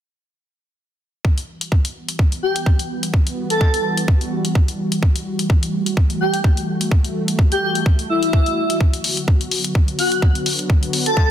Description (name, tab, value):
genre	bass house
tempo	127 BPM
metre	4/4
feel	swing 55% on 16ths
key	E minor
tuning	A4 = 440 Hz
part	sweeping resonant pad	sustained chords	1.2-11.3 s	D3 to F#4	-24 LUFS	equal	chorus, sidechain pumping
part	electronic kick drum	drums	1.2-11.3 s	none	-15 LUFS	equal	overdrive, studio reverb
part	electronic hi-hat	drums	1.4-11.1 s	none	-24 LUFS	left 3 dB	studio reverb
part	airy dreamy lead	melody	2.4-11.3 s	E4 to A4	-20 LUFS	left 1 dB	chorus, phaser, ping-pong delay
room	light reverb, digital ambience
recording	dense, heavily limited modern master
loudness	-16 LUFS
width	side -10 dB against mid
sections	1.2-11.3 A section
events	none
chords	1.2 Emadd9; 8.8 Bm